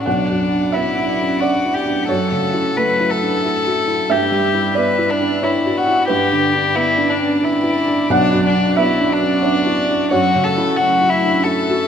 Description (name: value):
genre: neoclassical piano and strings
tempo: 90 BPM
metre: 3/4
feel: rubato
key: B minor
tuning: A4 = 440 Hz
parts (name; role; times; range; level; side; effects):
- rich violin; melody; 0.0-11.9 s; D4 to B4; -18 LUFS; left 3 dB; none
- felt-muted upright piano; accompaniment; 0.0-11.9 s; B1 to F#5; -18 LUFS; right 2 dB; none
- rich symphonic string section; sustained chords; 0.1-11.9 s; G3 to F#5; -27 LUFS; equal; none
room: wet concert hall reverb, RT60 1.9 s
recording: minimal, uncompressed stereo recording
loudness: -14 LUFS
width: side -8 dB against mid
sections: 0.1-11.9 A section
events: none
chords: 0.1 Bm; 2.1 F#m7; 4.1 Em/G; 6.1 G; 8.1 Bm; 10.1 F#m7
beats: | 0.06 0.75 1.42 | 2.09 2.77 3.44 | 4.11 4.77 5.44 | 6.09 6.76 7.42 | 8.12 8.78 9.44 | 10.11 10.78 11.46